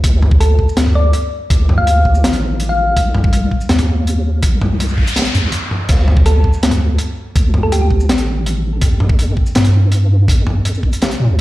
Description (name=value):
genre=half-time drum and bass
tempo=164 BPM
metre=4/4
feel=half-time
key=D phrygian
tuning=A4 = 440 Hz
part: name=deep soft wobble bass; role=bass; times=0.0-11.4 s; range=A1 to Bb2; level=-14 LUFS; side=equal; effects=chorus
part: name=crunchy breakbeat drum kit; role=drums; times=0.0-11.4 s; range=crash cymbal, hi-hat, shaker, snare drum, toms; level=-19 LUFS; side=equal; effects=none
part: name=electronic kick drum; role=drums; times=0.0-10.9 s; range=none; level=-14 LUFS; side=equal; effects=overdrive
part: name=thumb-piano-like synth pluck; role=melody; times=0.4-3.0, 6.3-7.9 s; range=G4 to F5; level=-21 LUFS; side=left 1 dB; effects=chorus, tape echo
part: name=noise sweep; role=sound effects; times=4.7-5.9 s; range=none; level=-23 LUFS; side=left 1 dB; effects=none
room=light reverb, small room ambience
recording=played on a big sound system in a bare room, large studio reverb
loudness=-12 LUFS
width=side -17 dB against mid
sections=0.0-11.4 A section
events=noise sweep 4.7-5.9; break 5.5-5.9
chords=0.0 Dm; 3.0 Cm; 5.9 D5; 8.8 Fsus2